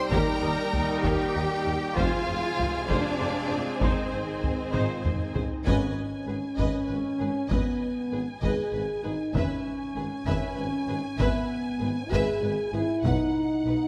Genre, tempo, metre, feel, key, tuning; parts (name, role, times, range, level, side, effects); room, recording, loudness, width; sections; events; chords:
cinematic, epic orchestral film score; 65 BPM (dotted quarters); 6/8; straight; G# minor from 5.7 s; A4 = 439 Hz
rich symphonic violin section; melody; 0.0-13.9 s; F#5 to Ab5; -42 LUFS; equal
warm symphonic violin section; second line; 0.0-13.7 s; G#4 to C6; -40 LUFS; equal
bright trombone section; sustained chords; 0.0-5.3 s; C3 to Ab3; -37 LUFS; equal
mellow French horn section; sustained chords; 0.0-13.9 s; Bb3 to G#4; -33 LUFS; equal
rich symphonic string section; sustained chords; 0.0-5.7 s; G3 to F5; -38 LUFS; equal
rich symphonic cello section; bass; 0.0-13.7 s; G#2 to C5; -36 LUFS; equal
rich symphonic viola section; accompaniment; 0.1-13.7 s; Eb4 to Eb5; -38 LUFS; equal
clear symphonic double bass section; bass; 0.1-13.7 s; Ab1 to F2; -38 LUFS; equal
mellow tuba; bass; 0.1-13.8 s; F1 to Eb2; -38 LUFS; equal
taiko ensemble; drums; 0.1-13.6 s; -32 LUFS; equal
moderate scoring stage reverb, RT60 2.0 s; -27 LUFS; mono
0.0-5.7 A section; 5.7-13.9 B section
drum fill 4.7-5.7; band accent 5.7-6.3
0.1 Eb; 2.0 Fm; 3.8 Ab; 5.7 G#m; 9.3 E/G#; 13.0 B